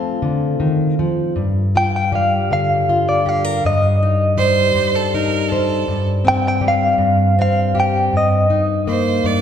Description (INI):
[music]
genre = acoustic folk-pop ballad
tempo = 53 BPM (dotted quarters)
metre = 6/8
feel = straight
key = G minor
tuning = A4 = 437 Hz
[part]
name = direct-recorded clean electric guitar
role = melody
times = 0.0-9.4 s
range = D5 to A5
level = -18 LUFS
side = equal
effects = tremolo
[part]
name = fingerpicked plugged-in steel-string acoustic guitar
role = accompaniment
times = 0.0-9.4 s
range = G2 to C5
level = -17 LUFS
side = left 2 dB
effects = none
[part]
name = clear violin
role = second line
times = 4.4-9.4 s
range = A4 to D5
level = -18 LUFS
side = right 6 dB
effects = none
[sound]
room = wet concert hall reverb, RT60 2.0 s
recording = recorded in a church or concert hall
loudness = -14 LUFS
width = side -8 dB against mid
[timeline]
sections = 0.0-1.4 A section; 1.4-9.4 B section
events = none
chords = 0.0 F; 1.4 G7(no3); 3.6 Cm/G; 5.9 G7sus4; 8.1 Cm7/G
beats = 0.24 | 1.38 2.51 | 3.63 4.75 | 5.88 7.00 | 8.12 9.26